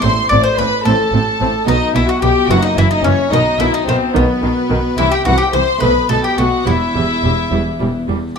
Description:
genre	classical, baroque-style concerto movement with solo episodes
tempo	72 BPM (dotted quarters)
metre	6/8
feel	straight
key	E minor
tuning	A4 = 439 Hz
part	bowl-back mandolin	melody	0.0-8.4 s	B3 to D5	-21 LUFS	left 1 dB	none
part	rich chamber violin section	melody	0.0-8.1 s	B4 to D6	-22 LUFS	left 2 dB	none
part	dark studio violin section	second line	0.0-8.1 s	B3 to D5	-18 LUFS	left 6 dB	none
part	harpsichord	accompaniment	0.0-8.3 s	E2 to E4	-22 LUFS	equal	none
part	warm chamber viola section	accompaniment	0.0-8.2 s	D#3 to C4	-23 LUFS	right 2 dB	none
part	warm chamber cello section	bass	0.0-8.2 s	E2 to C3	-20 LUFS	right 3 dB	none
part	warm studio double bass section	bass	0.0-8.2 s	E1 to C2	-20 LUFS	right 2 dB	none
room	moderate recital hall reverb, RT60 1.4 s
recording	close, detailed microphones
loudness	-12 LUFS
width	side -6 dB against mid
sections	0.0-8.4 A section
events	none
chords	0.0 Am; 1.7 B; 2.5 F#7; 3.3 B; 5.0 C; 5.8 B7; 6.7 Em

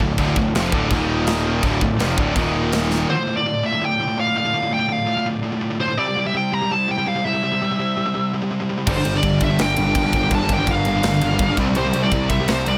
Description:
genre	heavy metal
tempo	166 BPM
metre	4/4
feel	straight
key	D minor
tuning	A4 = 440 Hz
part	phased analog pad	sustained chords	0.0-12.8 s	G3 to F5	-35 LUFS	equal	phaser, chorus
part	heavy high-gain guitar	riff	0.0-12.8 s	D2 to C4	-26 LUFS	equal	distortion
part	heavy high-gain guitar	riff	0.0-3.1, 8.9-12.8 s	D2 to C4	-28 LUFS	equal	distortion
part	thick fuzz guitar	riff	0.0-3.1, 8.9-12.8 s	D2 to C4	-28 LUFS	equal	distortion
part	fuzz picked electric bass	bass	0.0-3.0, 8.9-12.8 s	D1 to C2	-26 LUFS	equal	overdrive
part	tight metal drum kit	drums	0.0-3.0, 8.9-12.7 s	china cymbal, crash cymbal, kick drum, ride cymbal, snare drum	-26 LUFS	equal	none
part	smooth overdriven lead guitar	melody	3.1-12.8 s	C5 to Bb5	-24 LUFS	equal	none
room	light reverb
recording	none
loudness	-20 LUFS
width	mono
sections	0.0-3.1 A section; 3.1-12.8 B section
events	drum fill 2.9; half time 3.1-12.8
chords	0.0 Dm; 0.9 Eb5; 1.6 Dm; 2.4 Eb5; 3.1 Dm; 6.0 C; 8.9 Gm; 11.6 C

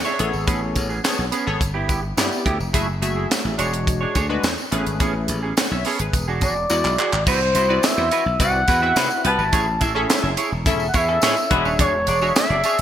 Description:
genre	early-eighties boogie funk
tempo	106 BPM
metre	4/4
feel	straight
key	A major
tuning	A4 = 440 Hz
part	funky polysynth comp	accompaniment	0.0-12.6 s	G#3 to F#5	-26 LUFS	left 2 dB	chorus
part	semi-hollow electric guitar	riff	0.0-12.8 s	A3 to E5	-26 LUFS	right 4 dB	analog chorus
part	slap bass	bass	0.0-12.8 s	D#1 to C3	-24 LUFS	equal	none
part	tambourine	percussion	0.0-12.8 s	none	-33 LUFS	left 4 dB	none
part	tight funk drum kit	drums	0.2-12.8 s	crash cymbal, handclaps, hi-hat, kick drum, snare drum	-22 LUFS	equal	gated reverb
part	expressive portamento lead	melody	6.4-12.8 s	C5 to A5	-21 LUFS	equal	chorus
part	warm horn section	second line	9.0-11.7 s	E3 to B4	-25 LUFS	left 3 dB	none
room	light reverb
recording	bright 1980s-style digital production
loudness	-18 LUFS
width	side -10 dB against mid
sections	0.0-7.3 A section; 7.3-12.8 B section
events	drum fill 6.7-7.3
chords	0.2 Amaj9; 1.6 G6; 2.7 F#m9; 3.6 E13; 4.7 Amaj9; 6.1 E9; 7.3 Cmaj9#11; 9.5 Amaj7; 11.5 E13

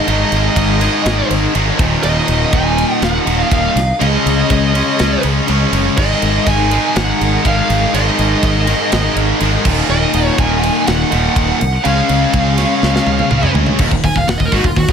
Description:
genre	heavy metal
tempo	122 BPM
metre	4/4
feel	straight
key	unclear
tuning	A4 = 436 Hz
part	high-gain lead guitar	melody	0.0-14.9 s	F4 to Ab5	-19 LUFS	right 1 dB	distortion, ping-pong delay
part	clear studio string section	sustained chords	0.0-14.9 s	Eb3 to Gb5	-27 LUFS	equal	none
part	distorted electric guitar	riff	0.0-14.9 s	Eb2 to Db4	-21 LUFS	equal	overdrive
part	scooped high-gain guitar	riff	0.0-14.9 s	Eb2 to Db4	-19 LUFS	left 12 dB	distortion
part	tight distorted guitar	riff	0.0-14.9 s	Eb2 to Db4	-20 LUFS	right 15 dB	distortion
part	growling fingered electric bass	bass	0.1-14.9 s	Eb1 to D2	-17 LUFS	equal	overdrive
part	tight metal drum kit	drums	0.1-14.9 s	crash cymbal, hi-hat, kick drum, ride cymbal, snare drum, toms	-20 LUFS	right 1 dB	none
room	little or no reverb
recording	none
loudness	-12 LUFS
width	side -7 dB against mid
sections	0.0-13.8 A section; 13.8-14.9 B section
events	half time 0.0-13.8; drum fill 12.8-13.8; lead electric guitar solo 13.8-14.9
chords	0.0 Ab5; 1.8 Ebm; 4.0 Db5; 6.0 Ab5; 9.7 Ebm; 11.8 Db; 13.8 Ebm

